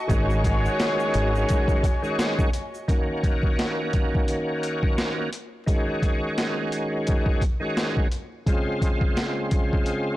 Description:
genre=hip hop, boom-bap hip-hop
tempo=86 BPM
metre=4/4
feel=swing 57% on 16ths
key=unclear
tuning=A4 = 444 Hz
part: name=muted studio string section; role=sustained chords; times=0.0-2.9 s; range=Gb4 to Db6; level=-33 LUFS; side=equal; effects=high-pass filter, low-pass filter
part: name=bright tonewheel organ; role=accompaniment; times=0.1-10.2 s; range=Db3 to Gb4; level=-26 LUFS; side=equal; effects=overdrive, chorus vibrato, slow rotary speaker, cassette tape, high-pass filter, low-pass filter
part: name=warm horn section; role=stabs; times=0.1-2.5 s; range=Ab3 to Db5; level=-30 LUFS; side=left 2 dB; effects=high-pass filter, low-pass filter, ping-pong delay
part: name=deep dub fingered electric bass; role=bass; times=0.1-1.4 s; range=Ab1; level=-24 LUFS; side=equal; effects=transformer saturation
part: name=boom bap sampler-style drum kit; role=drums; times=0.1-10.0 s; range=hi-hat, kick drum, snare drum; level=-24 LUFS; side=equal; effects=overdrive
part: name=tube shaker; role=percussion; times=0.1-2.9 s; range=none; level=-49 LUFS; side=right 4 dB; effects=none
room=small room ambience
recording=blown-out, overdriven recording, vinyl crackle, overdrive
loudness=-22 LUFS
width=side -16 dB against mid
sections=0.0-2.9 A section; 2.9-10.2 B section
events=none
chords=0.1 Ab7sus4; 2.9 Ebm7; 5.7 Ab7sus4; 8.5 Dbmaj7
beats=| 0.09 0.79 1.49 2.19 | 2.88 3.58 4.28 4.98 | 5.67 6.37 7.07 7.77 | 8.46 9.16 9.86

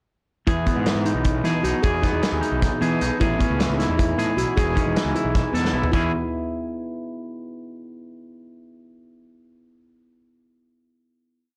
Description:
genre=math rock and midwest emo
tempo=308 BPM (eighths)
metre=7/8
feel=straight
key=E major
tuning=A4 = 441 Hz
part: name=twangy electric guitar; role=accompaniment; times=0.5-6.1 s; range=E2 to A4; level=-29 LUFS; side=equal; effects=plate reverb
part: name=handpan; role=arpeggios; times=0.5-6.1 s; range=B3 to G#4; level=-28 LUFS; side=equal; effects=plate reverb
part: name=fuzz picked electric bass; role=bass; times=0.5-6.1 s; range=E1 to E3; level=-28 LUFS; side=equal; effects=overdrive
part: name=loose indie drum kit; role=drums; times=0.5-6.0 s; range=crash cymbal, hi-hat, kick drum, snare drum, toms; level=-27 LUFS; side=equal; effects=none
room=light reverb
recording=blown-out, overdriven recording, overdrive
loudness=-22 LUFS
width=mono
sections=0.5-5.9 A section; 5.9-7.3 final chord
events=drum fill 5.6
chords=0.5 Emaj7; 3.2 Amaj9; 4.6 E6; 5.9 E5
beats=| 0.47 0.66 0.86 1.05 1.25 1.44 1.64 | 1.83 2.03 2.22 2.42 2.61 2.81 3.00 | 3.20 3.39 3.59 3.78 3.98 4.17 4.37 | 4.56 4.76 4.95 5.14 5.34 5.54 5.73 | 5.92

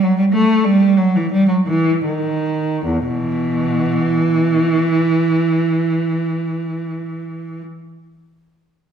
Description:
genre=classical, baroque-style suite movement for unaccompanied cello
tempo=72-96 BPM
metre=3/4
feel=rubato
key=E minor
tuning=A4 = 440 Hz
part: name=rich cello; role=solo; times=0.0-7.6 s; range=E2 to A3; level=-15 LUFS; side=right 1 dB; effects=none
room=wet recital hall reverb, RT60 1.5 s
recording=recorded in a church or concert hall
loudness=-15 LUFS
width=side -8 dB against mid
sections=0.0-2.8 A section; 2.8-7.6 B section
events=slowing down 0.0-2.8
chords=none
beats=0.01 | 0.64 1.30 2.04 | 2.84 3.61 4.40 | 5.21 6.00 6.79

